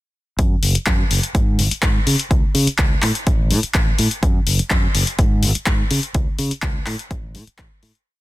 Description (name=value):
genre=filtered disco house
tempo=125 BPM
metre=4/4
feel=straight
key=F# minor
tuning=A4 = 438 Hz
part: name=fingered electric bass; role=bass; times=0.4-7.9 s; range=F#1 to C#3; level=-20 LUFS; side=equal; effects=sidechain pumping
part: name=electronic kick drum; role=drums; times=0.4-7.7 s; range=none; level=-19 LUFS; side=equal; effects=overdrive
part: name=punchy analog drum machine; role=drums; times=0.4-8.0 s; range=handclaps, hi-hat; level=-21 LUFS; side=left 3 dB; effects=overdrive, sidechain pumping on hats
room=little or no reverb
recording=dense, heavily limited modern master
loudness=-16 LUFS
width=side -17 dB against mid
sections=0.4-8.1 drop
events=drop 0.4-8.1; fade-out 5.5-8.1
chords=none